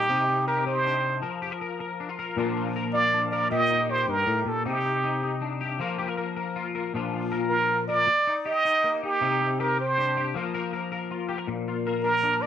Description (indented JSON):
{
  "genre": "highlife",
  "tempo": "105 BPM (dotted quarters)",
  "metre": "12/8",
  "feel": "straight",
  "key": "Bb major",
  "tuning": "A4 = 442 Hz",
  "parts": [
    { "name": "trumpet with plunger mute", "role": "melody", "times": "0.0-12.5 s", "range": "G4 to Eb5", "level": "-23 LUFS", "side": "right 2 dB", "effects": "none" },
    { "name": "twangy electric guitar", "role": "accompaniment", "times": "0.0-12.5 s", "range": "G2 to Bb4", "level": "-28 LUFS", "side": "left 4 dB", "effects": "ensemble chorus" }
  ],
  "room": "wet studio reverb, RT60 0.8 s",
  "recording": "none",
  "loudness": "-24 LUFS",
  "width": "side -9 dB against mid",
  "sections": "0.0-12.5 A section",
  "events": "none",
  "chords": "0.1 Cmadd9; 1.2 Fsus4; 2.4 Bb; 3.5 Eb/Bb; 4.7 Cmadd9; 5.8 Fsus4; 6.9 Bb; 8.1 Eb; 9.2 Cmadd9; 10.3 Fsus4; 11.5 Bb"
}